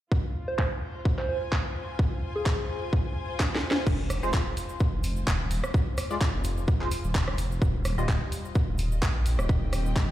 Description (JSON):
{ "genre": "bass house", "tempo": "128 BPM", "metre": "4/4", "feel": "swing 55% on 16ths", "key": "F minor", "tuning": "A4 = 439 Hz", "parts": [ { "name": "electronic kick drum", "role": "drums", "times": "0.1-10.1 s", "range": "none", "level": "-24 LUFS", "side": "equal", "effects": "overdrive, small room ambience" }, { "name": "rich studio string section", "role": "texture", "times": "0.1-10.1 s", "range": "F4 to Ab5", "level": "-40 LUFS", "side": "left 1 dB", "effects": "sidechain pumping" }, { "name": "soft struck synth lead", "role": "melody", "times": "0.5-2.8 s", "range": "Ab4 to C5", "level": "-34 LUFS", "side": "right 2 dB", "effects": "chorus, tremolo, ping-pong delay" }, { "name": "garage drum kit", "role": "drums", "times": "0.6-10.1 s", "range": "crash cymbal, handclaps, hi-hat, rim click, snare drum", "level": "-32 LUFS", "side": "equal", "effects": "overdrive, low-pass filter on snare, small room ambience, low-pass filter on cymbals, low-pass filter on hats" }, { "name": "phased detuned saw bass", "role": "bass", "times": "3.9-10.1 s", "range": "Eb1 to Bb1", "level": "-28 LUFS", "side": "equal", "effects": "phaser, sidechain pumping" }, { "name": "cabasa", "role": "percussion", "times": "3.9-10.1 s", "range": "none", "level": "-48 LUFS", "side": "right 3 dB", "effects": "none" }, { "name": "band-passed chord stab", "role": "stabs", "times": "4.2-9.8 s", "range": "G3 to Eb5", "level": "-36 LUFS", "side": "left 1 dB", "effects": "phaser, analog chorus, sidechain pumping, ping-pong delay" } ], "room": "light reverb, digital ambience", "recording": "played on a big sound system in a bare room, large studio reverb", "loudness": "-25 LUFS", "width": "side -14 dB against mid", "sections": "0.1-3.9 A section; 3.9-10.1 B section", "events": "drum fill 3.4-3.9; fade-in on string section 3.9-10.1", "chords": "0.1 Fm; 7.6 Ebadd9" }